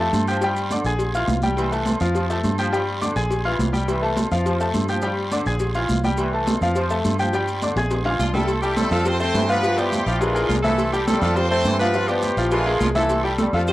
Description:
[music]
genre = latin, salsa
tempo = 208 BPM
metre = 4/4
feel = straight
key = C major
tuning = A4 = 440 Hz
[part]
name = brilliant trombone section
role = second line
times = 0.0-13.7 s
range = D3 to G3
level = -30 LUFS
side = equal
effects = cassette tape, analog delay
[part]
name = bright grand piano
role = accompaniment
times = 0.0-13.7 s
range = E3 to Ab6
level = -23 LUFS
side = left 1 dB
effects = cassette tape
[part]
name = fingered electric bass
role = bass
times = 0.0-13.7 s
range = Bb1 to G2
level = -25 LUFS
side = equal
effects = none
[part]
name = agogo bells and timbales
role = percussion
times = 0.1-13.7 s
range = none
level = -34 LUFS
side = right 3 dB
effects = none
[part]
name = congas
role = percussion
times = 0.1-13.7 s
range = none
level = -27 LUFS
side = right 1 dB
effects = none
[part]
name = cowbell and bongos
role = percussion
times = 0.1-13.7 s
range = none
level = -30 LUFS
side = left 2 dB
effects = none
[part]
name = guiro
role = percussion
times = 0.1-13.7 s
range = none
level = -36 LUFS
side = right 3 dB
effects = none
[part]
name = maracas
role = percussion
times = 0.1-13.7 s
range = none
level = -42 LUFS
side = left 2 dB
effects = none
[part]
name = brilliant horn section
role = melody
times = 8.2-13.7 s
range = F3 to C5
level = -23 LUFS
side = right 1 dB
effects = none
[sound]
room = light reverb, small room ambience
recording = home recording on cassette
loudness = -18 LUFS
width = side -16 dB against mid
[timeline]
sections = 0.0-8.5 A section; 8.5-13.7 B section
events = drum fill 7.8-8.5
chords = 0.4 G5; 1.0 Bb7(no3); 1.6 C6; 2.1 F; 2.7 G5; 3.3 Bb7(no3); 3.9 C6; 4.5 F; 5.0 G5; 5.6 Bb7(no3); 6.2 C6; 6.8 F; 7.3 G5; 7.9 Bb7; 8.5 C6; 9.1 Fmaj7; 9.6 G7; 10.2 Bb7; 10.8 C6; 11.4 Fmaj7; 11.9 G7; 12.5 Bb7; 13.1 C6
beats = 0.13 | 0.42 0.71 1.00 1.29 | 1.57 1.86 2.15 2.44 | 2.73 3.02 3.30 3.59 | 3.88 4.17 4.45 4.74 | 5.03 5.32 5.61 5.89 | 6.18 6.47 6.76 7.04 | 7.33 7.62 7.91 8.20 | 8.48 8.77 9.06 9.35 | 9.63 9.92 10.21 10.50 | 10.79 11.07 11.36 11.65 | 11.94 12.23 12.52 12.81 | 13.10 13.39 13.68

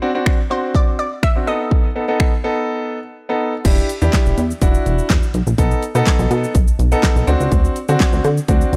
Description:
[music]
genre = dance-pop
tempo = 124 BPM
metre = 4/4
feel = straight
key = E minor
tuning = A4 = 440 Hz
[part]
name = clear concert grand piano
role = accompaniment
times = 0.0-8.8 s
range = B3 to A4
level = -23 LUFS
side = equal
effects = sidechain pumping
[part]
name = pop drum kit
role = drums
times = 0.3-8.8 s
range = crash cymbal, finger snaps, handclaps, hi-hat, kick drum, shaker, snare drum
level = -19 LUFS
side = equal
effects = none
[part]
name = analog pluck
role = melody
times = 0.5-2.4 s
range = C5 to E5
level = -26 LUFS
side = equal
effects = chorus, tape echo
[part]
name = plucky analog bass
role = bass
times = 3.6-8.8 s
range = E1 to D3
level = -19 LUFS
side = equal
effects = sidechain pumping
[sound]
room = little or no reverb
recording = dry, gritty hardware recording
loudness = -17 LUFS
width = mono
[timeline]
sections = 0.0-3.6 A section; 3.6-8.8 B section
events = break 2.7-3.6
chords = 0.0 D7; 1.5 B7; 3.6 Em7; 5.6 B7; 7.3 D7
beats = 0.26 0.74 1.23 | 1.71 2.20 2.68 3.17 | 3.65 4.13 4.62 5.10 | 5.58 6.07 6.55 7.04 | 7.52 8.00 8.49

